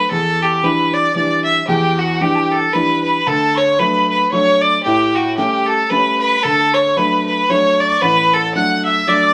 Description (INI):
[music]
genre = celtic folk, Celtic waltz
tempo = 114 BPM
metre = 3/4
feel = swing 57% on 8ths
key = E dorian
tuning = A4 = 440 Hz
[part]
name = clear fiddle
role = melody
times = 0.0-9.3 s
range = F#4 to F#5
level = -17 LUFS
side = equal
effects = none
[part]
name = clear upright piano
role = accompaniment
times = 0.1-9.3 s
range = A1 to D4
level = -22 LUFS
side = equal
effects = none
[part]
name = breathy tin whistle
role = second line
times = 1.7-9.3 s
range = F#5 to F#6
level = -24 LUFS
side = equal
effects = none
[sound]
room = moderate studio ambience, RT60 0.5 s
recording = vinyl crackle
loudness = -15 LUFS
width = mono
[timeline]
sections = 0.0-1.7 A section; 1.7-9.3 A section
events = none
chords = 0.1 Em7; 3.3 D; 4.8 A7; 6.4 D